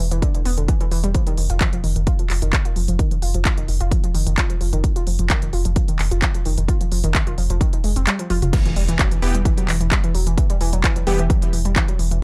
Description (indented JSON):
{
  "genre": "driving peak-time techno",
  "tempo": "130 BPM",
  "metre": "4/4",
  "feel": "straight",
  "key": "unclear",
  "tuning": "A4 = 441 Hz",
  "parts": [
    { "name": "warbly dusty pluck", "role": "riff", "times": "0.0-12.2 s", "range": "D3 to F4", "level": "-29 LUFS", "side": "equal", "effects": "chorus, sidechain pumping, tape echo" },
    { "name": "saturated sub bass", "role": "bass", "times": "0.0-12.2 s", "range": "E1 to F1", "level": "-23 LUFS", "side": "equal", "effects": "tube saturation, sidechain pumping, low-pass filter" },
    { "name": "techno drum kit", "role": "drums", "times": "0.1-12.2 s", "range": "crash cymbal, handclaps, hi-hat, toms", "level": "-27 LUFS", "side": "equal", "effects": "none" },
    { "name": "electronic kick drum", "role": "drums", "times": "0.2-11.9 s", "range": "none", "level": "-22 LUFS", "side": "equal", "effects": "none" },
    { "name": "impact", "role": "sound effects", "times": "8.5-10.4 s", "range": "none", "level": "-31 LUFS", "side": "equal", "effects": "none" },
    { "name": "supersaw stab", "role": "stabs", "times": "9.2-11.2 s", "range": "E3 to G4", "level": "-27 LUFS", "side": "equal", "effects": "sidechain pumping, tape echo" }
  ],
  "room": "little or no reverb",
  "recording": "dry, gritty hardware recording, transformer saturation",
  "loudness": "-19 LUFS",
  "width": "mono",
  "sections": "0.0-8.5 A section; 8.5-12.2 B section",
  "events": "kick drops out 8.1-8.5; drum fill 8.3; drop 8.5-12.2; impact 8.5-10.4",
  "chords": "0.0 N.C.; 8.5 Em"
}